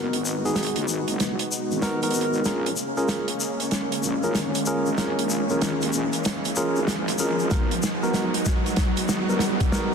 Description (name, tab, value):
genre	glitch hop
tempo	95 BPM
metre	4/4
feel	swing 63% on 16ths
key	G# dorian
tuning	A4 = 440 Hz
part	warm analog pad	sustained chords	0.0-9.9 s	G#3 to F#4	-28 LUFS	right 1 dB	chorus, vintage 12-bit sampler grit, sidechain pumping
part	bright tine electric piano	stabs	0.0-9.9 s	B3 to A#4	-27 LUFS	equal	sidechain pumping, ping-pong delay
part	wobble bass	bass	0.0-9.9 s	F#1 to D#2	-32 LUFS	left 1 dB	chorus, high-pass filter
part	riser	sound effects	0.7-9.9 s	none	-31 LUFS	right 1 dB	none
part	warm soul drum kit	drums	0.1-9.9 s	hi-hat, snare drum	-28 LUFS	right 1 dB	none
part	tube shaker	percussion	0.3-9.9 s	none	-33 LUFS	left 5 dB	none
part	electronic kick drum	drums	7.5-9.7 s	none	-24 LUFS	equal	none
room	moderate lush hall reverb, RT60 1.9 s, small room ambience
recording	dense, heavily limited modern master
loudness	-22 LUFS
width	side -6 dB against mid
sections	0.0-9.9 A section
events	build-up 0.0-9.9; drum fill 0.0-9.9; riser 0.7-9.9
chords	0.0 G#m7; 2.5 A#m7; 7.5 G#m7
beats	0.57 1.20 1.83 | 2.46 3.10 3.73 4.36 | 4.99 5.62 6.25 6.88 | 7.52 8.15 8.78 9.41